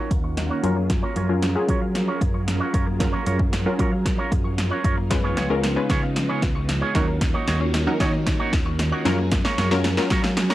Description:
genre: dance-pop.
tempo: 114 BPM.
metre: 4/4.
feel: straight.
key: unclear.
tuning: A4 = 443 Hz.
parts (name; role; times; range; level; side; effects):
wide unison pluck; accompaniment; 0.0-10.5 s; Gb3 to Db5; -26 LUFS; moving between left 4 dB and right 3 dB; auto-pan, sidechain pumping, low-pass filter, cassette tape.
string machine, violins; sustained chords; 0.0-10.5 s; Db3 to Bb4; -30 LUFS; equal; ensemble chorus, sidechain pumping, low-pass filter, cassette tape.
mallet-like synth pluck; arpeggios; 0.0-10.5 s; Eb3 to Ab6; -34 LUFS; left 2 dB; chorus, sidechain pumping, low-pass filter, cassette tape, analog delay.
electric guitar with an envelope filter; riff; 0.0-10.5 s; Bb3 to Db5; -28 LUFS; right 4 dB; lush chorus, low-pass filter, cassette tape.
fingered electric bass; bass; 0.1-10.5 s; Db2 to Gb3; -25 LUFS; equal; sidechain pumping.
punchy analog drum machine; drums; 0.1-10.5 s; hi-hat, kick drum, snare drum; -24 LUFS; equal; cassette tape.
room: light reverb.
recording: home recording on cassette.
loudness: -20 LUFS.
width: side -15 dB against mid.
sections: 0.0-10.5 A section.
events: build-up 0.0-10.5; drum fill 0.0-10.5; filter sweep 0.0-10.5.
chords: 0.0 Ebm7; 0.6 Gbmaj7; 5.1 Db7; 7.0 Ebm7; 9.1 Gbmaj7.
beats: 0.37 | 0.90 1.42 1.95 2.48 | 3.00 3.53 4.06 4.58 | 5.11 5.63 6.16 6.69 | 7.21 7.74 8.27 8.79 | 9.32 9.85 10.37.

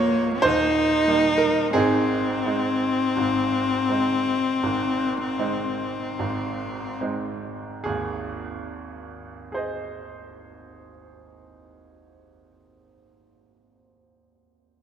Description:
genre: classical, romantic duo for cello and grand piano.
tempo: 34-50 BPM.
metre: 4/4.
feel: rubato.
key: Ab major.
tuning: A4 = 440 Hz.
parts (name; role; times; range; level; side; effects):
rich cello; melody; 0.0-7.0 s; Bb3 to Eb4; -22 LUFS; left 2 dB; none.
bright baby grand piano; accompaniment; 0.0-14.8 s; Db1 to Eb5; -26 LUFS; right 3 dB; none.
room: moderate concert hall reverb, RT60 2.6 s.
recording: none.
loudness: -21 LUFS.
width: side -8 dB against mid.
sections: 0.0-7.9 A section; 7.9-14.3 B section.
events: slowing down 0.0-7.9.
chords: 0.4 Eb; 1.7 Ab.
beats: 0.42 | 1.74 3.17 4.62 6.17 | 7.85 9.51 11.10 12.70.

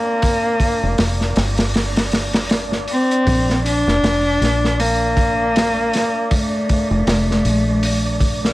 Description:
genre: trip hop.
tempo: 79 BPM.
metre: 4/4.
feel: swing 58% on 16ths.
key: unclear.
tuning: A4 = 436 Hz.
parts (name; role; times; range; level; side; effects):
dark cello; melody; 0.0-8.5 s; A3 to D4; -19 LUFS; equal; dub echo.
wind-like tuned noise texture; texture; 0.0-8.5 s; D4 to D5; -27 LUFS; right 1 dB; built-in reverb.
crunchy breakbeat drum kit; drums; 0.2-8.5 s; hi-hat, kick drum, snare drum; -20 LUFS; equal; none.
fingered electric bass; bass; 0.8-8.5 s; F1 to Bb1; -21 LUFS; equal; none.
room: light reverb, small room reverb.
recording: vinyl crackle.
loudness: -15 LUFS.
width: side -18 dB against mid.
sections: 0.0-8.5 A section.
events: none.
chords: 0.0 Gm7; 3.3 Bbmaj7.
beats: | 0.24 1.00 1.76 2.52 | 3.28 4.04 4.80 5.56 | 6.32 7.08 7.83.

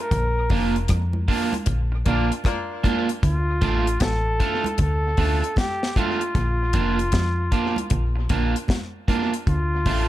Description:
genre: roots reggae.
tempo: 77 BPM.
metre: 4/4.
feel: swing 63% on 16ths.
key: unclear.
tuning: A4 = 440 Hz.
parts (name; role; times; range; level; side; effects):
warm flugelhorn; melody; 0.0-10.1 s; F4 to Bb4; -27 LUFS; equal; tape echo, plate reverb.
deep dub fingered electric bass; bass; 0.1-10.1 s; F1 to F2; -23 LUFS; equal; none.
deep reggae drum kit; drums; 0.1-10.1 s; hi-hat, kick drum, rim click, snare drum; -24 LUFS; left 1 dB; dub echo.
congas; percussion; 0.1-10.1 s; none; -33 LUFS; right 3 dB; none.
electric guitar at the edge of break-up; accompaniment; 0.5-10.1 s; A3 to F4; -26 LUFS; right 4 dB; tape echo, plate reverb.
warm horn section; second line; 2.1-3.1 s; Bb3 to F4; -30 LUFS; left 3 dB; tape echo, plate reverb.
room: light reverb.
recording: none.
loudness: -20 LUFS.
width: side -14 dB against mid.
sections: 0.0-10.1 A section.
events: band accent 0.1-3.2.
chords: 0.1 Bb; 3.2 Dm; 6.3 Bb; 9.5 Dm.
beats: | 0.12 0.90 1.67 2.45 | 3.23 4.01 4.79 5.57 | 6.35 7.13 7.91 8.69 | 9.46.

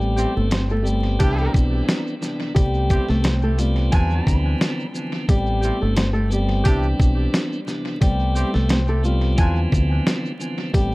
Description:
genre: hip hop, boom-bap hip-hop.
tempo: 88 BPM.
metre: 4/4.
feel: swing 54% on 16ths.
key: A minor.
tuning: A4 = 440 Hz.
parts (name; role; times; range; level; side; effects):
flamenco guitar; melody; 0.0-10.9 s; G3 to C5; -27 LUFS; left 1 dB; high-pass filter, low-pass filter, tape echo.
tonewheel organ; accompaniment; 0.0-10.9 s; C2 to D4; -26 LUFS; equal; stopped rotary speaker, high-pass filter, low-pass filter, tape echo.
deep dub fingered electric bass; bass; 0.0-10.9 s; G1 to E2; -20 LUFS; equal; none.
warm horn section; stabs; 0.2-9.6 s; C4 to G#5; -30 LUFS; right 1 dB; high-pass filter, low-pass filter, tape echo.
dusty soul sampler-style drum kit; drums; 0.2-10.9 s; hi-hat, kick drum, shaker, snare drum; -21 LUFS; equal; tape echo.
room: little or no reverb.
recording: echo-heavy mix, vinyl crackle.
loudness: -18 LUFS.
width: side -22 dB against mid.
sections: 0.0-10.9 A section.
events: none.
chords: 0.0 Am9; 1.2 Cmaj9; 2.6 Am9/C; 3.9 E5; 5.3 Am9; 6.7 Cmaj9; 8.0 Am9/C; 9.4 E5.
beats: 0.52 1.20 1.88 | 2.56 3.24 3.93 4.61 | 5.29 5.97 6.65 7.33 | 8.02 8.70 9.38 10.06 | 10.74.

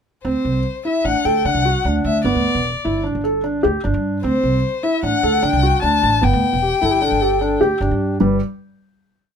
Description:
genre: contemporary instrumental, chamber music in an uneven meter.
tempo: 151 BPM.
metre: 5/4.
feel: straight.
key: G major.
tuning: A4 = 438 Hz.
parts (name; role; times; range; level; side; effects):
dark violin; melody; 0.2-7.8 s; C5 to A5; -20 LUFS; left 7 dB; none.
felt-muted upright piano; arpeggios; 0.2-8.4 s; G3 to A4; -19 LUFS; right 2 dB; none.
upright bass; bass; 0.2-8.4 s; E1 to D3; -21 LUFS; right 2 dB; none.
French horn with straight mute; second line; 6.6-8.4 s; G4 to B4; -22 LUFS; left 2 dB; none.
room: little or no reverb.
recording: close, detailed microphones.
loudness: -16 LUFS.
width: side -7 dB against mid.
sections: 0.2-8.2 A section; 8.2-9.4 final chord.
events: none.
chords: 0.2 D7; 2.2 G; 4.2 D7; 6.2 Gadd9; 8.2 N.C..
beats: | 0.24 0.65 1.04 1.45 1.85 | 2.25 2.65 3.04 3.44 3.84 | 4.24 4.64 5.03 5.43 5.83 | 6.22 6.62 7.02 7.41 7.81 | 8.21.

